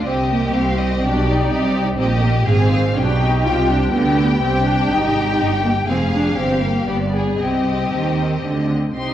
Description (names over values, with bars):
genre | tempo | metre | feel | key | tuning
quick classical-period movement for string orchestra | 114-127 BPM | 3/4 | rubato | C minor | A4 = 438 Hz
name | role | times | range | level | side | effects
warm studio violin section | melody | 0.0-9.1 s | D5 to C6 | -26 LUFS | left 5 dB | none
rich studio violin section | second line | 0.0-9.1 s | G4 to Eb5 | -23 LUFS | left 3 dB | none
warm studio viola section | accompaniment | 0.0-9.1 s | Bb3 to F4 | -22 LUFS | equal | none
clear studio double bass section | bass | 0.0-9.1 s | F1 to Eb2 | -21 LUFS | right 2 dB | none
warm studio cello section | bass | 0.0-9.1 s | C2 to Eb3 | -22 LUFS | right 2 dB | none
room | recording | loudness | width
wet scoring stage reverb, RT60 1.6 s | worn, warbling old tape, cassette tape, warbly pitch drift | -15 LUFS | side -11 dB against mid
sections
0.0-8.9 A section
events
none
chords
0.1 Cm; 1.0 G/B; 1.5 Cm; 2.5 Fm/Ab; 3.0 G7/B; 4.4 Cm; 5.9 Fm; 6.4 C5/G; 6.9 G; 7.4 Cm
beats
| 0.06 0.54 1.02 | 1.51 1.98 2.47 | 2.96 3.45 3.93 | 4.42 4.91 5.40 | 5.89 6.38 6.88 | 7.40 7.92 8.44 | 8.95